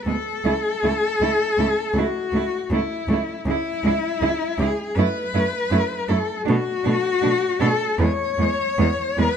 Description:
classical, lyrical piece for cello ensemble; 79 BPM; 4/4; rubato; A major; A4 = 440 Hz
dark cello; melody; 0.0-9.4 s; E4 to C#5; -22 LUFS; left 4 dB
warm cello; second line; 0.1-9.3 s; B3 to E4; -27 LUFS; right 9 dB
warm cello; accompaniment; 0.1-9.3 s; G#3 to A3; -27 LUFS; left 1 dB
rich cello; bass; 0.1-9.3 s; C#2 to B2; -25 LUFS; right 1 dB
moderate large studio reverb, RT60 1.2 s; -19 LUFS; side -8 dB against mid
0.0-9.4 A section
0.5 A/C#; 3.5 C#m; 5.0 F#m7; 6.5 B7(no3); 8.0 E

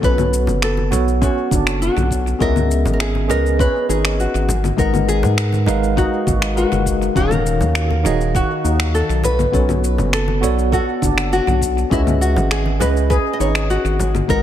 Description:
sunset chillout; 101 BPM; 4/4; straight; A4 = 439 Hz
nylon-string guitar; melody; 0.0-14.4 s; Fb4 to Eb5; -22 LUFS; left 1 dB; tape echo
tine electric piano; accompaniment; 0.0-14.4 s; Eb3 to Gb5; -22 LUFS; moving between left 9 dB and right 8 dB; medium tremolo, auto-pan, dub echo
steel pan; arpeggios; 0.0-14.4 s; C#4 to A4; -27 LUFS; equal; dub echo
round analog bass; bass; 0.0-14.4 s; Eb1 to Ab2; -19 LUFS; equal
electronic kick drum; drums; 0.0-14.4 s; -20 LUFS; equal; small room reverb
electronic shaker, congas and finger snaps; drums; 0.0-14.4 s; -24 LUFS; left 2 dB; overdrive, small room reverb, tape echo
congas; percussion; 0.5-14.1 s; -27 LUFS; left 1 dB; tape echo
light reverb, studio reverb; echo-heavy mix; -15 LUFS; side -11 dB against mid
0.0-14.4 A section
0.0 B7sus2; 2.4 Dbm9; 4.5 Abm9; 7.2 Ebm9; 9.2 Bm9; 11.9 Dbm9

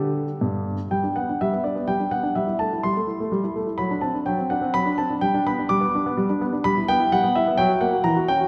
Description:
classical-period piano sonatina; 126 BPM; 3/4; rubato; G major; A4 = 440 Hz
warm baby grand piano; solo; 0.0-8.5 s; G2 to D6; -23 LUFS; equal
wet concert hall reverb, RT60 2.3 s; recorded in a church or concert hall; -23 LUFS; mono
0.9-8.5 A section
0.0 G5; 0.9 G; 2.4 Am7/G; 3.8 D7/F#; 5.2 G; 6.6 Em/G; 7.6 F#

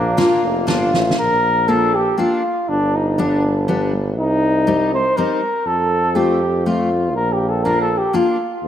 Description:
alpine folk, alpine dance band; 121 BPM; 3/4; straight; Bb major; A4 = 440 Hz
mellow flugelhorn; melody; 0.0-8.7 s; Bb3 to C5; -18 LUFS; equal
clear trumpet; second line; 0.0-0.7 s; D4; -30 LUFS; right 2 dB
clear tuba; bass; 0.0-8.7 s; F1 to F2; -21 LUFS; equal
fingerpicked steel-string acoustic guitar; accompaniment; 0.2-8.4 s; G3 to F4; -20 LUFS; left 2 dB; analog chorus
loose indie drum kit; drums; 0.2-1.2 s; ride cymbal, snare drum; -23 LUFS; right 2 dB
moderate lush hall reverb, RT60 1.8 s, small room ambience; dreamy mix soaked in reverb; -15 LUFS; side -10 dB against mid
0.0-1.2 A section; 1.2-8.7 A section
drum fill 0.9
0.0 Bb; 2.7 G; 4.2 Cm; 5.7 F; 7.1 Bb

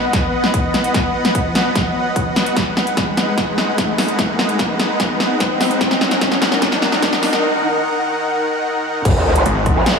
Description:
heavy wobble dubstep; 148 BPM; 4/4; half-time; G# minor; A4 = 440 Hz
supersaw pad; sustained chords; 0.0-10.0 s; D#3 to F#5; -19 LUFS; equal; sidechain pumping
riser and sub drop; sound effects; 0.0-10.0 s; -22 LUFS; left 1 dB
big-room dance drum kit; drums; 0.1-9.9 s; crash cymbal, hi-hat, rim click, snare drum; -19 LUFS; left 1 dB
electronic kick drum; drums; 0.1-9.7 s; -22 LUFS; equal
growl bass; bass; 9.1-10.0 s; G#1; -15 LUFS; equal; chorus, overdrive
snarling distorted saw bass; bass; 9.5-9.7 s; G#1; -18 LUFS; equal; distortion, overdrive
moderate digital room reverb, RT60 1.3 s; high-pass filter, small room ambience; -14 LUFS; side -5 dB against mid
0.0-9.1 A section
build-up 0.0-9.1; drum fill 0.0-7.4; riser 0.0-7.4; break 7.4-9.1; impact 9.1-10.0
0.0 B; 2.6 G#m7; 5.8 D#m; 9.1 G#m7

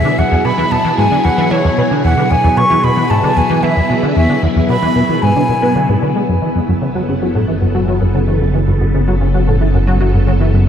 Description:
ambient, sequencer-driven space music; 113 BPM; 4/4; straight; F# minor; A4 = 440 Hz
breathy concert flute; melody; 0.0-6.0 s; C#5 to C#6; -16 LUFS; equal; analog delay
phased string machine; sustained chords; 0.0-10.7 s; B2 to A4; -17 LUFS; equal; ensemble chorus, phaser
plucky analog bass; riff; 0.0-10.6 s; E2 to B3; -15 LUFS; equal; ensemble chorus, analog delay
fat analog bass; bass; 6.3-10.7 s; F#1; -15 LUFS; equal
wet spring reverb, RT60 2.5 s; echo-heavy mix; -11 LUFS; side -8 dB against mid
0.0-6.3 A section; 6.3-10.7 B section
0.0 E; 6.3 F#m

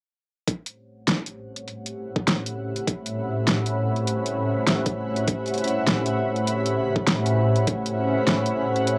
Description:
glitch hop; 100 BPM; 4/4; swing 62% on 16ths; A4 = 440 Hz
dark analog pad; sustained chords; 1.4-9.0 s; A3 to C#5; -30 LUFS; equal; chorus, phaser, sidechain pumping, cassette tape
electronic kick drum; drums; 0.5-7.8 s; -28 LUFS; equal; overdrive, high-pass filter on kick, high-pass filter on room
pop drum kit; drums; 0.5-9.0 s; hi-hat, snare drum; -26 LUFS; equal; overdrive
granular cloud pad; texture; 1.7-9.0 s; A2 to B5; -27 LUFS; equal; built-in reverb, sidechain pumping, cassette tape
wet small room reverb, RT60 0.5 s; home recording on cassette; -24 LUFS; mono
0.5-9.0 A section
0.5 A7#9

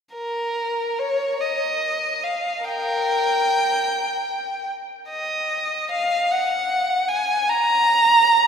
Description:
classical, free, expressive piece for unaccompanied violin; 49 BPM (dotted quarters); 6/8; rubato; Bb dorian; A4 = 440 Hz
rich violin; solo; 0.1-8.5 s; Bb4 to Bb5; -19 LUFS; equal
wet church reverb, RT60 3.3 s; minimal, uncompressed stereo recording; -19 LUFS; side -7 dB against mid
0.1-8.5 A section

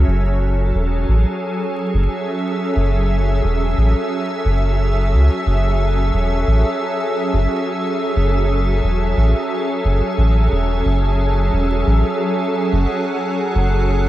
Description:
ambient dub; 89 BPM; 4/4; swing 56% on 16ths; F# minor; A4 = 440 Hz
soft additive organ-like pad; sustained chords; 0.0-14.1 s; F#3 to F#5; -20 LUFS; equal; ensemble chorus, built-in reverb
soft dub sub bass; bass; 0.0-14.1 s; E1 to C#2; -16 LUFS; equal
light reverb; vinyl crackle; -16 LUFS; side -14 dB against mid
0.1-14.1 A section
0.1 F#m7

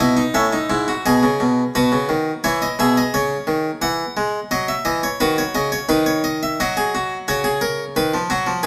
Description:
classical, baroque-style 3-part fugue for harpsichord; 87 BPM; 4/4; straight; B major; A4 = 442 Hz
harpsichord; solo; 0.0-8.7 s; G#2 to F#5; -19 LUFS; equal
moderate stone room reverb, RT60 1.0 s; -19 LUFS; mono
0.0-1.0 A section; 1.0-8.7 B section
0.0 C#m; 1.0 B; 2.4 C#m; 3.8 F#5/E; 5.2 B; 6.6 F#; 8.0 G#m/D# (rootless)

